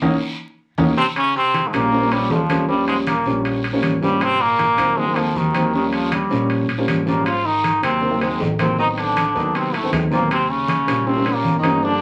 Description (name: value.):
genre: Afro-Cuban jazz.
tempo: 158 BPM.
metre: 4/4.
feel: straight.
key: Eb mixolydian.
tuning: A4 = 440 Hz.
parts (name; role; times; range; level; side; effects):
dark grand piano; accompaniment; 0.0-12.0 s; Eb3 to Eb4; -24 LUFS; equal; none.
upright bass; bass; 0.0-12.0 s; G1 to Eb2; -31 LUFS; equal; none.
congas; percussion; 0.0-12.0 s; none; -27 LUFS; equal; none.
guiro; percussion; 0.0-12.0 s; none; -38 LUFS; equal; none.
timbales; percussion; 0.0-11.8 s; none; -29 LUFS; equal; none.
trombone with metal mute; melody; 1.0-12.0 s; Eb3 to F4; -22 LUFS; equal; none.
warm baritone saxophone; second line; 1.0-12.0 s; Eb2 to F3; -30 LUFS; equal; none.
room: wet studio reverb, RT60 0.5 s.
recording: vinyl crackle.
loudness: -19 LUFS.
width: mono.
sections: 0.0-1.2 A section; 1.2-12.0 B section.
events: band accent 0.0-1.2; baritone saxophone solo 0.0-1.2; grand piano fill 0.0-1.2; drum fill 0.6-1.2.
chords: 0.0 Eb7(no3); 1.2 Eb9; 4.2 Ab9; 5.7 Eb9; 7.3 Ab9; 8.8 Adim7; 10.3 Eb9.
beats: 0.02 0.40 0.78 | 1.16 1.54 1.92 2.31 | 2.69 3.07 3.45 3.83 | 4.21 4.59 4.97 5.35 | 5.74 6.12 6.50 6.88 | 7.26 7.64 8.02 8.40 | 8.78 9.16 9.54 9.93 | 10.31 10.69 11.07 11.45 | 11.83.